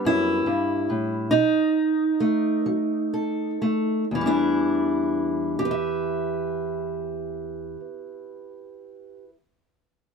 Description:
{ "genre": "acoustic country blues, solo or duo", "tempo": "40-49 BPM (dotted quarters)", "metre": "12/8", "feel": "straight", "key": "E minor", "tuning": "A4 = 440 Hz", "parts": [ { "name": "fingerpicked steel-string acoustic guitar", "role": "solo", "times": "0.0-9.4 s", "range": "E2 to E5", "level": "-22 LUFS", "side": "right 1 dB", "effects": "none" } ], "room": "light reverb", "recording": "none", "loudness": "-22 LUFS", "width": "side -5 dB against mid", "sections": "0.0-4.1 A section; 4.1-10.1 B section", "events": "slowing down 0.0-4.1", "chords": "0.0 Em; 1.3 B7; 4.1 Em7" }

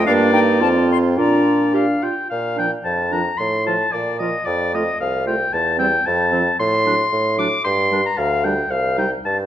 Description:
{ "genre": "quick classical-period movement for wind quintet", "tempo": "112 BPM", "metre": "2/4", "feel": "rubato", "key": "Bb major", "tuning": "A4 = 438 Hz", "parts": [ { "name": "silver concert flute", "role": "melody", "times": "0.0-9.0 s", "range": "A4 to C6", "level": "-26 LUFS", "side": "left 7 dB", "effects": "none" }, { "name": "clear oboe", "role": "second line", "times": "0.0-9.4 s", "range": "D5 to D6", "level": "-20 LUFS", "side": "left 2 dB", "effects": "none" }, { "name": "mellow French horn", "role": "accompaniment", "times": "0.0-9.1 s", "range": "F3 to D4", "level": "-22 LUFS", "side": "equal", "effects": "none" }, { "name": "mellow clarinet", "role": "accompaniment", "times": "0.0-9.1 s", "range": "C4 to G4", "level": "-25 LUFS", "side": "right 6 dB", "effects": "none" }, { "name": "warm bassoon", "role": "bass", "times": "0.0-9.5 s", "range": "C2 to Bb2", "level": "-22 LUFS", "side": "right 2 dB", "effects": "none" } ], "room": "wet recital hall reverb, RT60 1.7 s", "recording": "none", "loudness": "-16 LUFS", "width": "side -11 dB against mid", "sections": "0.0-2.3 A section; 2.3-9.5 A section", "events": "none", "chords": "0.1 Gm; 0.6 F5; 1.2 Bb; 3.4 F/A; 3.9 Bb; 4.5 F; 5.5 C/E; 6.1 F; 6.6 D7/A; 7.6 Gm; 8.7 Cm" }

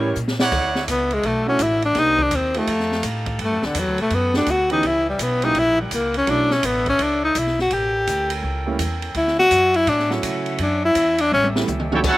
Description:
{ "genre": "jazz, big band swing", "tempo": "167 BPM", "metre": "4/4", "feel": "swing 64% on 8ths", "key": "D major", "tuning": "A4 = 440 Hz", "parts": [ { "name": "mellow trombone section", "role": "second line", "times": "0.0-0.2, 11.9-12.2 s", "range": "E3 to G4", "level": "-28 LUFS", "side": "right 3 dB", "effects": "none" }, { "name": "warm grand piano", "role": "accompaniment", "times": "0.0-6.5, 8.7-12.0 s", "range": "E3 to C#5", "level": "-26 LUFS", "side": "right 4 dB", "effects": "slapback echo" }, { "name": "upright bass", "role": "bass", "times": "0.0-12.2 s", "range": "A1 to C#3", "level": "-27 LUFS", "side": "equal", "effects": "none" }, { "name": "open jazz drum kit", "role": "drums", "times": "0.2-12.1 s", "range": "crash cymbal, hi-hat, kick drum, ride cymbal, snare drum, toms", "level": "-27 LUFS", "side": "right 1 dB", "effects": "none" }, { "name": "clear trumpet section", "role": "stabs", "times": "0.4-0.9 s", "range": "E4 to F#5", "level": "-21 LUFS", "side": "right 3 dB", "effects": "none" }, { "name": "bright saxophone section", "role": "sustained chords", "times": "0.5-12.2 s", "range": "D3 to G5", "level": "-31 LUFS", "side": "equal", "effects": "none" }, { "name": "breathy tenor saxophone", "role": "melody", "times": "0.9-11.5 s", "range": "D3 to G4", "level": "-18 LUFS", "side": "left 1 dB", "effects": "none" }, { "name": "brilliant trumpet section", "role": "melody", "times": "11.9-12.2 s", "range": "E4 to G5", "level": "-18 LUFS", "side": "right 3 dB", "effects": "none" } ], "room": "little or no reverb", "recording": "recorded outdoors, with no room sound", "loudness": "-17 LUFS", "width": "side -17 dB against mid", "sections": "0.5-12.0 A section", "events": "drum fill 0.2-0.5, 11.3-12.0; tenor saxophone solo 0.5-12.0", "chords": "0.0 A7b9; 0.5 Dmaj9; 2.0 Cm7; 2.7 F9; 3.4 Gmaj9; 4.8 C#m7b5; 5.6 F#7b9; 6.3 Bm11; 7.7 A7b9; 9.2 Dmaj9; 11.3 A7" }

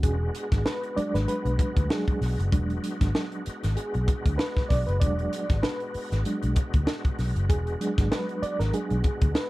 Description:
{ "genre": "funk", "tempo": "97 BPM", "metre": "4/4", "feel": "swing 56% on 16ths", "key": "E mixolydian", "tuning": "A4 = 441 Hz", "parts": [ { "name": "bright tonewheel organ", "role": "sustained chords", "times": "0.0-9.5 s", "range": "G#3 to F#4", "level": "-38 LUFS", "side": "left 1 dB", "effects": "slow rotary speaker, overdrive, chorus vibrato" }, { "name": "reed electric piano", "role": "stabs", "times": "0.0-9.5 s", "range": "F#3 to D5", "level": "-30 LUFS", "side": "right 1 dB", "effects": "tremolo" }, { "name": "vintage muted fingered electric bass", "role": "bass", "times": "0.0-9.3 s", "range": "E1 to D2", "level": "-26 LUFS", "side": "equal", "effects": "none" }, { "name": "crisp fusion drum kit", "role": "drums", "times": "0.0-9.5 s", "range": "hi-hat, kick drum, snare drum", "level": "-26 LUFS", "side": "equal", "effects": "none" } ], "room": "little or no reverb", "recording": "none", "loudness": "-24 LUFS", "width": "side -19 dB against mid", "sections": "0.0-9.5 A section", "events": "reed electric piano solo 0.0-9.5", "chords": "0.0 E9 (rootless)" }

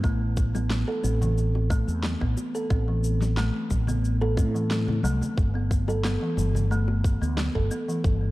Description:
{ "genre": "organic downtempo", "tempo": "90 BPM", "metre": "4/4", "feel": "straight", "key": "A minor", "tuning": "A4 = 440 Hz", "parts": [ { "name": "kalimba", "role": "arpeggios", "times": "0.0-8.3 s", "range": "E3 to A4", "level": "-29 LUFS", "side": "equal", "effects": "digital delay" }, { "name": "mellow fretless electric bass", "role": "bass", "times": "0.0-8.3 s", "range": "G1 to A2", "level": "-25 LUFS", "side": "equal", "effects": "ensemble chorus" }, { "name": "electronic kick drum", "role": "drums", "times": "0.0-8.2 s", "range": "none", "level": "-25 LUFS", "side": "equal", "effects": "small room ambience" }, { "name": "electronic shaker and snare drum", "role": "drums", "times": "0.0-8.2 s", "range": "none", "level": "-35 LUFS", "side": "equal", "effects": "small room ambience" }, { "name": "congas and bongos", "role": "percussion", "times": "0.5-7.8 s", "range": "none", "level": "-36 LUFS", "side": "left 2 dB", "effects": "none" } ], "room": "light reverb, digital ambience", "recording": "dark, warm production", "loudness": "-23 LUFS", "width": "side -18 dB against mid", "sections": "0.0-8.3 A section", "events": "none", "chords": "0.0 A5; 5.4 Gadd9" }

